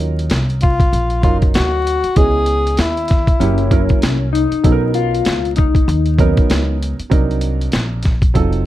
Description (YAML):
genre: hip hop, jazz-hop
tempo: 97 BPM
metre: 4/4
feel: swing 60% on 16ths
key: unclear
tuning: A4 = 440 Hz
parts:
  - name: dark grand piano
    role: accompaniment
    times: 0.0-8.6 s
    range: Gb3 to F5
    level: -21 LUFS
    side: right 6 dB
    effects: none
  - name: upright bass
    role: bass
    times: 0.0-8.7 s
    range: F1 to Eb2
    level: -18 LUFS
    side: equal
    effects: none
  - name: boom bap sampler-style drum kit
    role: drums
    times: 0.2-8.6 s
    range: hi-hat, kick drum, snare drum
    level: -15 LUFS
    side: equal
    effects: none
  - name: breathy tenor saxophone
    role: melody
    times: 0.6-4.0 s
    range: Fb4 to Ab4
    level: -18 LUFS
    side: left 2 dB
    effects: slapback echo
  - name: mellow electric guitar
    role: second line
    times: 3.4-6.8 s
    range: Db4 to F4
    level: -19 LUFS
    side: left 9 dB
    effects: harmonic tremolo
room: light reverb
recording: dark, warm production, vinyl crackle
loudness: -13 LUFS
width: side -14 dB against mid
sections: 0.0-8.7 A section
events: none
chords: 0.0 Ebm7; 2.2 Dbm9; 3.4 Gb7b9; 4.6 Bmaj9; 7.1 Cm7b5